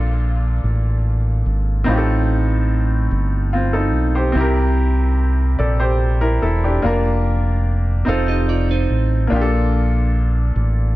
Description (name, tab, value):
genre	gospel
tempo	48 BPM (dotted quarters)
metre	6/8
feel	straight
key	Bb major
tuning	A4 = 438 Hz
part	bright grand piano	accompaniment	0.0-11.0 s	A2 to D5	-21 LUFS	left 1 dB	none
part	fingered electric bass	bass	0.0-11.0 s	E1 to C2	-17 LUFS	equal	none
part	clean electric guitar	second line	8.1-9.3 s	Eb4 to Eb5	-25 LUFS	right 8 dB	none
room	studio ambience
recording	dark, warm production, nothing above 7.5 kHz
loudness	-16 LUFS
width	side -17 dB against mid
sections	0.0-11.0 A section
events	none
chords	0.0 Bbmaj7; 1.9 F7/A; 4.4 C7; 6.8 Bb/F; 8.1 F7; 9.3 Bbmaj7